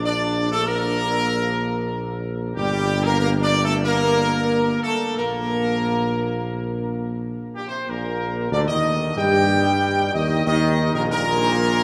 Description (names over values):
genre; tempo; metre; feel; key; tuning
classical; 86-96 BPM; 4/4; straight; unclear; A4 = 444 Hz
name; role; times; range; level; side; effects
clear trumpet section; melody; 0.0-11.8 s; G4 to G5; -25 LUFS; equal; none
mellow French horn section; sustained chords; 0.0-11.8 s; G3 to G4; -30 LUFS; equal; none
warm trombone section; sustained chords; 0.0-11.8 s; G2 to D4; -31 LUFS; equal; none
mellow tuba; bass; 0.0-11.8 s; G1 to G2; -26 LUFS; equal; none
room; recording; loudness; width
wet cathedral reverb, RT60 5.2 s; none; -21 LUFS; mono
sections
0.0-7.9 A section; 7.9-11.8 B section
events
none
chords
0.0 Bb; 2.6 Gm; 5.2 N.C.; 7.9 Eb/Bb